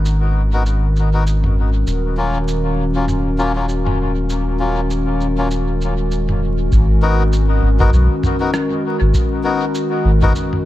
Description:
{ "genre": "ambient dub", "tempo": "99 BPM", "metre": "4/4", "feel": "swing 57% on 16ths", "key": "unclear", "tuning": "A4 = 440 Hz", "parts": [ { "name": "warbly tape-like pad", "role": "sustained chords", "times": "0.0-10.7 s", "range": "D#3 to A#4", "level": "-20 LUFS", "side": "left 1 dB", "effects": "chorus, built-in reverb" }, { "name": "soft dub sub bass", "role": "bass", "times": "0.0-10.3 s", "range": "D#1 to B1", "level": "-16 LUFS", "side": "equal", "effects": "none" }, { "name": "lo-fi sampler-style drum kit", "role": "drums", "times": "0.1-10.6 s", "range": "rim click, shaker, toms", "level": "-26 LUFS", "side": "equal", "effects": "studio reverb, dub echo" }, { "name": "melodica", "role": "stabs", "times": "0.5-10.3 s", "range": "F#3 to A#4", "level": "-23 LUFS", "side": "left 3 dB", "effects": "dub echo" }, { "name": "electronic kick drum", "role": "drums", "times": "6.7-10.3 s", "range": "none", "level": "-20 LUFS", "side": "equal", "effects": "studio reverb" } ], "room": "light reverb", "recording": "echo-heavy mix, vinyl crackle", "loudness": "-14 LUFS", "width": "side -14 dB against mid", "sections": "0.0-6.7 A section; 6.7-10.7 B section", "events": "none", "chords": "0.0 G#7(no3); 1.9 D#m7; 6.7 G#m7" }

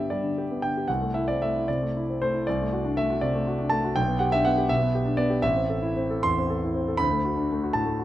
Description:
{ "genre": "classical, romantic character piece for solo piano", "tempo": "70-83 BPM (dotted quarters)", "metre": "6/8", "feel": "rubato", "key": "G major", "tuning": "A4 = 441 Hz", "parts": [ { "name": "warm concert grand piano", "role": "solo", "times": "0.0-8.0 s", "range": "A1 to C6", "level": "-23 LUFS", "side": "equal", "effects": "none" } ], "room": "moderate recital hall reverb, RT60 1.4 s", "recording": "close, detailed microphones", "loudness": "-23 LUFS", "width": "side -13 dB against mid", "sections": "0.0-8.0 A section", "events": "none", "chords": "0.0 G; 0.9 Am/C; 4.0 G/B; 5.4 Am; 7.0 D" }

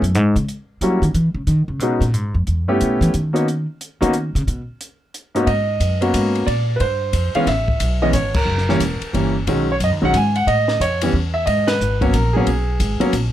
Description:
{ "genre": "jazz piano trio", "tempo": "180 BPM", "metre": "3/4", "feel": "swing 64% on 8ths", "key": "G# minor", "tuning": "A4 = 438 Hz", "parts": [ { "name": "upright bass", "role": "bass", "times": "0.0-13.3 s", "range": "E1 to F#3", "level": "-19 LUFS", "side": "equal", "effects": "none" }, { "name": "compact cocktail drum kit", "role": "drums", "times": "0.0-13.2 s", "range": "crash cymbal, hi-hat, kick drum, ride cymbal, snare drum", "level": "-26 LUFS", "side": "left 1 dB", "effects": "none" }, { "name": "clear concert grand piano", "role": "melody", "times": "0.8-13.1 s", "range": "G#2 to G#5", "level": "-18 LUFS", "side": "equal", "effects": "none" } ], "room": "light reverb", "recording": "none", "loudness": "-16 LUFS", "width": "side -12 dB against mid", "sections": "0.0-5.5 A section; 5.5-13.3 B section", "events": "upright bass solo 0.0-5.5; band accent 8.3, 11.6", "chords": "0.5 F#7(no3); 1.5 B69; 2.5 A9; 3.5 N.C.; 5.5 G#m11; 6.5 A#5; 7.5 Amaj9; 8.5 F#7b9; 9.5 B69; 10.5 A; 11.5 G#madd9" }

